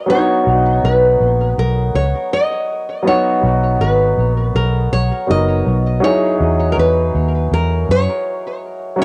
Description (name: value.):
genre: lovers rock reggae.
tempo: 81 BPM.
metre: 4/4.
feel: swing 55% on 16ths.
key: B major.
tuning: A4 = 440 Hz.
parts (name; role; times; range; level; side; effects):
nylon-string guitar; melody; 0.0-9.0 s; A#4 to D#5; -20 LUFS; equal; tape echo.
warm concert grand piano; accompaniment; 0.0-9.0 s; F#3 to A#4; -21 LUFS; equal; cassette tape, analog delay.
vintage muted fingered electric bass; bass; 0.5-8.1 s; F#1 to F#2; -18 LUFS; equal; none.
room: light reverb, small room ambience.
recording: home recording on cassette.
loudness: -16 LUFS.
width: mono.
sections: 0.1-9.0 A section.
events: none.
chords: 0.1 Bmaj7; 6.0 Emaj9.